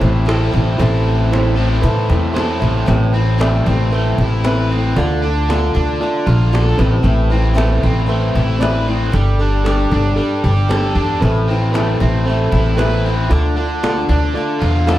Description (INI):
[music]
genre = folk rock and heartland rock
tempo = 115 BPM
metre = 4/4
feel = straight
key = A minor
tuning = A4 = 441 Hz
[part]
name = overdriven reed electric piano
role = accompaniment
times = 0.0-15.0 s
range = C4 to C6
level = -24 LUFS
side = right 4 dB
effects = none
[part]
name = picked steel-string acoustic guitar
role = accompaniment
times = 0.0-15.0 s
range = A2 to B4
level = -22 LUFS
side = left 5 dB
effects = none
[part]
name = overdriven electric guitar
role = riff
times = 0.0-15.0 s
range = A2 to B4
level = -21 LUFS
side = equal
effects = none
[part]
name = upright bass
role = bass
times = 0.0-15.0 s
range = G1 to A2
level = -16 LUFS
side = equal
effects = none
[part]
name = cajon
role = drums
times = 0.0-15.0 s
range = none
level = -24 LUFS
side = equal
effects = none
[sound]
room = studio reverb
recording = dark, warm production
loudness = -13 LUFS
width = side -14 dB against mid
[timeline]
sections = 0.0-2.9 A section; 2.9-15.0 B section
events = reed electric piano fill 1.3-2.9, 14.6-15.0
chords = 0.0 Am; 2.9 Amadd9; 5.0 Dm; 6.8 Amadd9; 9.1 Gsus2; 11.2 Amadd9; 13.3 Dm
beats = 0.27 | 0.79 1.31 1.83 2.35 | 2.88 3.40 3.92 4.44 | 4.96 5.48 6.00 6.52 | 7.05 7.57 8.09 8.61 | 9.13 9.65 10.18 10.70 | 11.22 11.74 12.26 12.78 | 13.31 13.83 14.35 14.87